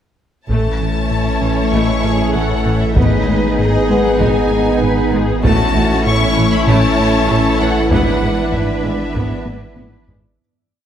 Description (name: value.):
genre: cinematic, hybrid orchestral and electronic film score.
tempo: 97 BPM.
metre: 4/4.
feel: straight.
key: unclear.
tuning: A4 = 441 Hz.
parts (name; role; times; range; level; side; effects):
rich symphonic violin section; melody; 0.5-9.8 s; D#5 to C#6; -23 LUFS; left 4 dB; none.
warm symphonic violin section; second line; 0.5-10.2 s; E4 to C#5; -24 LUFS; left 2 dB; none.
rich symphonic viola section; accompaniment; 0.5-10.2 s; E3 to D#4; -23 LUFS; right 1 dB; none.
bright trombone section; sustained chords; 0.5-10.0 s; D#3 to B3; -23 LUFS; right 5 dB; none.
glassy FM pad; sustained chords; 0.8-10.4 s; E3 to D#5; -23 LUFS; left 2 dB; ensemble chorus, built-in reverb.
mellow French horn section; sustained chords; 0.5-10.0 s; B3 to G#4; -23 LUFS; left 2 dB; none.
smooth synth bass; riff; 0.5-10.3 s; G#2 to A3; -20 LUFS; left 2 dB; none.
warm studio double bass section; bass; 0.5-10.2 s; G#1 to A1; -23 LUFS; right 4 dB; none.
warm sub bass; bass; 0.5-10.4 s; G#1 to A1; -22 LUFS; equal; none.
taiko ensemble; drums; 0.5-10.4 s; none; -20 LUFS; equal; none.
rich symphonic cello section; bass; 1.7-10.0 s; D#4 to B4; -24 LUFS; right 2 dB; none.
felt-muted upright piano; texture; 1.7-7.9 s; B3 to D#5; -27 LUFS; left 2 dB; none.
room: moderate scoring stage reverb, RT60 1.7 s.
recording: none.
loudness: -12 LUFS.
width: side -9 dB against mid.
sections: 0.5-10.4 theme.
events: fade-out 7.9-10.4; drum fill 9.5-10.4.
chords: 0.5 A; 3.0 G#m; 5.4 A; 7.9 E7/G#.